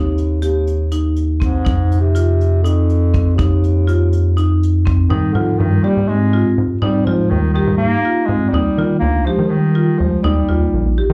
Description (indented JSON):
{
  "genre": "progressive instrumental, band music in an uneven meter",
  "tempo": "245 BPM (eighths)",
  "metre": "7/8",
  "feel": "straight",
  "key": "unclear",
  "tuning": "A4 = 440 Hz",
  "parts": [
    { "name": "warm bass clarinet", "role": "melody", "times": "0.0-10.9 s", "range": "Eb2 to Bb3", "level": "-23 LUFS", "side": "equal", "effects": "slapback echo" },
    { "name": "marimba with medium hard mallets", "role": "arpeggios", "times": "0.0-11.1 s", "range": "C4 to G4", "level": "-24 LUFS", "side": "equal", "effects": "slapback echo" },
    { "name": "rubbery square bass", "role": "bass", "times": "0.0-11.1 s", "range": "Bb1 to Eb3", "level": "-18 LUFS", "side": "equal", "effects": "none" },
    { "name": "soft brush drum kit", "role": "drums", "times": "0.2-5.0 s", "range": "hi-hat, kick drum", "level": "-23 LUFS", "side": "equal", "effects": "none" },
    { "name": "vibraphone with soft mallets", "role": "second line", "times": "5.1-10.9 s", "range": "F3 to Eb4", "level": "-24 LUFS", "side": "equal", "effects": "slapback echo" }
  ],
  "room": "light reverb",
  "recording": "live gig heard through the venue's PA, club ambience",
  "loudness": "-16 LUFS",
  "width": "mono",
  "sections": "0.0-5.1 A section; 5.1-11.1 B section",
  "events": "none",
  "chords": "0.0 Eb; 1.7 F5; 5.1 Abmaj7; 8.5 Ebmaj7"
}